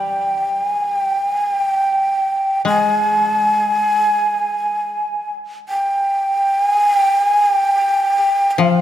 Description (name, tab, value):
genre	japanese traditional, Japanese chamber music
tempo	free time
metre	none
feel	none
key	unclear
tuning	A4 = 440 Hz
part	breathy mellow shakuhachi	melody	0.0-8.8 s	F5 to Ab5	-15 LUFS	equal	none
part	koto	accompaniment	0.0-8.8 s	F3 to Ab3	-21 LUFS	left 5 dB	none
room	moderate cathedral reverb, RT60 4.4 s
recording	none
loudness	-15 LUFS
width	side -11 dB against mid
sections	0.0-8.8 A section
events	none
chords	none